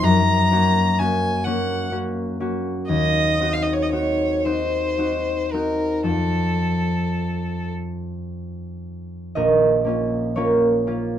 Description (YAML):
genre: classical, romantic duo for violin and harp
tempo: 36-44 BPM (dotted quarters)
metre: 6/8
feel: rubato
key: Bb minor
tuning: A4 = 441 Hz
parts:
  - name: rich violin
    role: melody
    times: 0.0-7.7 s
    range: A4 to Bb5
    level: -22 LUFS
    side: left 2 dB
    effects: none
  - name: concert harp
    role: accompaniment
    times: 0.0-11.2 s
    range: Bb1 to Eb5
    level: -20 LUFS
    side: equal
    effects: none
room: moderate studio reverb, RT60 0.5 s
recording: dark, warm production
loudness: -19 LUFS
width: side -10 dB against mid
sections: 0.0-9.4 A section; 9.4-11.2 A section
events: none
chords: 0.0 Gb; 2.9 Cdim/Eb; 6.1 F; 9.4 Bbm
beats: | 0.03 1.45 | 2.89 4.45 | 6.07 7.74 | 9.36 10.85